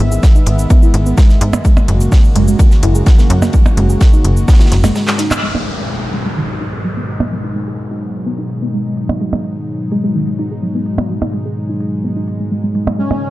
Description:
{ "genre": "melodic techno", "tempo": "127 BPM", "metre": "4/4", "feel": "straight", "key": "G# minor", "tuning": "A4 = 439 Hz", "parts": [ { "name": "warm analog pad", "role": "sustained chords", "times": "0.0-13.3 s", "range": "G#2 to E5", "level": "-21 LUFS", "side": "left 1 dB", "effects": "chorus, sidechain pumping" }, { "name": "soft round pluck", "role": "arpeggios", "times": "0.0-13.1 s", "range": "D#3 to G#4", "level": "-21 LUFS", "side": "equal", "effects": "wide subtle chorus, sidechain pumping, digital delay" }, { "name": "tight sequencer bass", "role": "bass", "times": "0.0-4.9 s", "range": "F#1 to G#2", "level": "-13 LUFS", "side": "equal", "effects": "sidechain pumping" }, { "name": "analog drone", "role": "drone", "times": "0.2-13.3 s", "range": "G#2 to D#3", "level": "-26 LUFS", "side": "equal", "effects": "chorus, sidechain pumping" }, { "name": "techno drum kit", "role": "drums", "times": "0.1-13.3 s", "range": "handclaps, hi-hat, percussion blips, shaker", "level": "-19 LUFS", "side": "right 2 dB", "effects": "low-pass filter on perc, low-pass filter on hats, low-pass filter on snare, low-pass filter on room" }, { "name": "electronic kick drum", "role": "drums", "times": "0.2-4.6 s", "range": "none", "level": "-9 LUFS", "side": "equal", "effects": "none" }, { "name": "tight metal drum kit", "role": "drums", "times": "0.2-5.3 s", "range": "hi-hat, ride cymbal, snare drum", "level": "-29 LUFS", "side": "right 1 dB", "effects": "high-pass filter on cymbals, high-pass filter on hats, high-pass filter on snare, high-pass filter on room" }, { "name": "downlifter", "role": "sound effects", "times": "5.4-9.2 s", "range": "none", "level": "-26 LUFS", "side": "left 1 dB", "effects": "none" }, { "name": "soft supersaw", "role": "melody", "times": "13.0-13.3 s", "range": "C#4", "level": "-20 LUFS", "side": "left 3 dB", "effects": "sidechain pumping" } ], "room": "light reverb", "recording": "dark, warm production", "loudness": "-11 LUFS", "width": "side -17 dB against mid", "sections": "0.0-5.4 A section; 5.4-13.3 B section", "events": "break 5.0-5.4; drum fill 5.1-5.4; band accent 5.3", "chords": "0.0 C#madd9/G# (rootless); 1.6 F#add9; 5.4 G#m7", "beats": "0.23 0.70 1.18 | 1.65 2.12 2.59 3.06 | 3.54 4.01 4.48 4.96 | 5.43 5.90 6.37 6.84 | 7.32 7.79 8.26 8.73 | 9.21 9.68 10.15 10.62 | 11.10 11.57 12.04 12.51 | 12.99" }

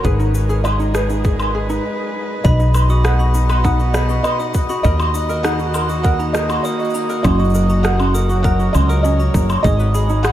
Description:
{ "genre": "folktronica", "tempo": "100 BPM", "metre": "4/4", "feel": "straight", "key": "B major", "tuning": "A4 = 439 Hz", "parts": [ { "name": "felt-muted upright piano", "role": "melody", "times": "0.0-10.3 s", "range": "B4 to F#5", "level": "-24 LUFS", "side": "right 1 dB", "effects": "analog chorus, diffuse ambient delay" }, { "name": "dark string quartet", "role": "sustained chords", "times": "0.0-10.3 s", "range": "B2 to D#5", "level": "-25 LUFS", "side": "equal", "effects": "none" }, { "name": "ukulele", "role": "arpeggios", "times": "0.0-10.3 s", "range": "C#4 to B4", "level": "-25 LUFS", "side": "right 1 dB", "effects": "diffuse ambient delay" }, { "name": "upright bass", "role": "bass", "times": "0.0-10.3 s", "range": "F#1 to D#2", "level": "-16 LUFS", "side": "equal", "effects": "none" }, { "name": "electronic kick drum", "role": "drums", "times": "0.0-9.8 s", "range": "none", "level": "-18 LUFS", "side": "equal", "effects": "overdrive" }, { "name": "electronic shaker, woodblock and rim click", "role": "drums", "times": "0.0-10.3 s", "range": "none", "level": "-25 LUFS", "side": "equal", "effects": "overdrive" }, { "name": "glockenspiel with brass mallets", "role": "second line", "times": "2.4-10.0 s", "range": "A#5 to D#6", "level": "-27 LUFS", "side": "right 1 dB", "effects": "diffuse ambient delay" } ], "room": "light reverb, studio ambience", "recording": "none", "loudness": "-14 LUFS", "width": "side -12 dB against mid", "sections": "0.0-2.4 A section; 2.4-10.3 B section", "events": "break 1.8-2.4", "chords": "0.0 G#m; 2.4 B; 4.8 D#m; 7.2 F#; 9.6 G#m", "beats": "| 0.05 0.65 1.25 1.85 | 2.45 3.05 3.65 4.25 | 4.85 5.45 6.05 6.65 | 7.25 7.85 8.45 9.05 | 9.65 10.25" }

